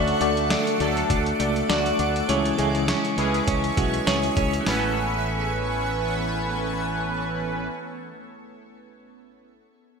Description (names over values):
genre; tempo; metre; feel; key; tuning
1980s-style pop; 101 BPM; 4/4; swing 55% on 16ths; A major; A4 = 441 Hz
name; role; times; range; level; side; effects
FM electric piano with auto-pan; accompaniment; 0.0-9.6 s; A1 to D5; -26 LUFS; left 1 dB; none
shimmering ambient pad; sustained chords; 0.0-7.7 s; B3 to D6; -31 LUFS; left 1 dB; chorus, built-in reverb, phaser
electric guitar at the edge of break-up; riff; 0.0-8.3 s; E3 to A4; -29 LUFS; right 6 dB; lush chorus, digital delay
fretless electric bass; bass; 0.0-7.7 s; A1 to D2; -30 LUFS; equal; none
dusty soul sampler-style drum kit; drums; 0.1-4.8 s; hi-hat, kick drum, snare drum; -28 LUFS; equal; overdrive, gated reverb
analog synth brass; stabs; 0.8-7.7 s; E3 to B4; -29 LUFS; right 1 dB; chorus
room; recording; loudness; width
wet plate reverb, RT60 2.0 s; bright 1980s-style digital production; -21 LUFS; side -5 dB against mid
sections
0.0-4.7 A section; 4.7-7.0 B section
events
none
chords
0.0 D; 2.3 C#m; 4.7 Aadd9